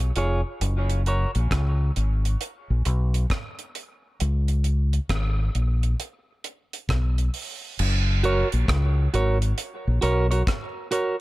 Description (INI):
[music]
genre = dub reggae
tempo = 67 BPM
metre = 4/4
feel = swing 64% on 16ths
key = F# major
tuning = A4 = 442 Hz
[part]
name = deep dub fingered electric bass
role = bass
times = 0.0-10.4 s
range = E#1 to C#2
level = -22 LUFS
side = equal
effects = none
[part]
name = deep reggae drum kit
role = drums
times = 0.0-11.2 s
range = crash cymbal, hi-hat, kick drum, rim click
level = -29 LUFS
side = right 1 dB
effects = none
[part]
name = clean electric guitar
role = accompaniment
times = 0.2-1.3, 8.2-11.2 s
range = E#4 to C#5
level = -27 LUFS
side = right 2 dB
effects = high-pass filter, dub echo
[sound]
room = small room ambience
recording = none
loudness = -21 LUFS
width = side -18 dB against mid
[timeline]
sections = 0.0-7.8 A section; 7.8-11.2 B section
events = none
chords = 0.0 C#; 0.6 F#; 4.2 C#5; 7.8 F#